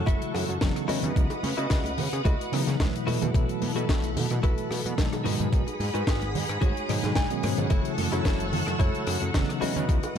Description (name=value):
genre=nu-disco, nu disco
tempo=110 BPM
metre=4/4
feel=swing 54% on 16ths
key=F# dorian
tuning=A4 = 435 Hz
part: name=tine electric piano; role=accompaniment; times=0.0-10.0 s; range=B2 to E4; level=-31 LUFS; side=equal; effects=medium stereo tremolo, sidechain pumping, ping-pong delay
part: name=string machine, full ensemble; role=sustained chords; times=0.0-10.2 s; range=G#4 to E6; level=-34 LUFS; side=equal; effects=ensemble chorus, sidechain pumping
part: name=fat analog bass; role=bass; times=0.0-10.0 s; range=F#1 to C#3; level=-30 LUFS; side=equal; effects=none
part: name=direct-recorded clean electric guitar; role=riff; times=0.1-10.2 s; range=D#4 to G#5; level=-34 LUFS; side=left 2 dB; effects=wide subtle chorus, ping-pong delay
part: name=electronic kick drum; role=drums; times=0.1-10.0 s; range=none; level=-25 LUFS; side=equal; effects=none
part: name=tight funk drum kit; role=drums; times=0.1-10.2 s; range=hi-hat, rim click, snare drum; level=-34 LUFS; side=left 2 dB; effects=none
part: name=congas and bongos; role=percussion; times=0.1-10.2 s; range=none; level=-35 LUFS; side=right 5 dB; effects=none
room=light reverb, studio reverb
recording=dark, warm production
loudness=-24 LUFS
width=side -8 dB against mid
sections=0.0-10.2 A section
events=clean electric guitar fill 6.9-7.7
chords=0.0 F#m7; 0.9 C#m11; 3.1 B7sus4; 5.3 G#m7; 7.7 F#m7; 9.6 C#m11